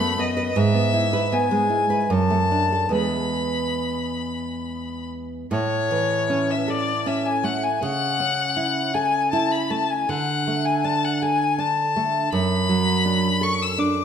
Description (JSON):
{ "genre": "romantic duo for violin and classical guitar", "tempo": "69-84 BPM", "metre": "3/4", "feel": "rubato", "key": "A major", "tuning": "A4 = 440 Hz", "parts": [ { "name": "rich violin", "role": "melody", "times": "0.0-14.0 s", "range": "C#5 to E6", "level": "-23 LUFS", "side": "left 5 dB", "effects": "none" }, { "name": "nylon-string guitar", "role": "accompaniment", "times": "0.0-14.0 s", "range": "E2 to B4", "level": "-23 LUFS", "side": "right 3 dB", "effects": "none" } ], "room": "moderate scoring stage reverb, RT60 1.7 s", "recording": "minimal, uncompressed stereo recording", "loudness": "-20 LUFS", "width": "side -8 dB against mid", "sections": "0.0-5.5 A section; 5.5-14.0 B section", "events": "none", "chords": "0.0 B7/F#; 0.6 E/G#; 2.1 D/F#; 3.0 E; 5.5 A; 7.8 A/C#; 10.1 D5; 12.3 D/F#" }